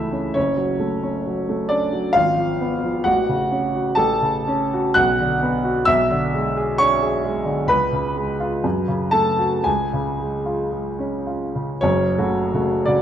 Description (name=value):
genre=classical, romantic character piece for solo piano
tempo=53-69 BPM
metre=2/4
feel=rubato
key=F# minor from 4.0 s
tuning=A4 = 440 Hz
part: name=warm grand piano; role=solo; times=0.0-13.0 s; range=F#1 to F#6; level=-18 LUFS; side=equal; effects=none
room=moderate recital hall reverb, RT60 1.4 s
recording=dark, warm production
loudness=-18 LUFS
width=side -10 dB against mid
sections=0.0-11.8 A section; 11.8-13.0 B section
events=none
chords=0.4 F#m; 2.2 Fdim/Ab; 3.1 F#m/A; 5.0 Bm; 5.9 G#dim/B; 7.7 C#7; 8.6 F#m; 9.7 C#; 11.8 F#m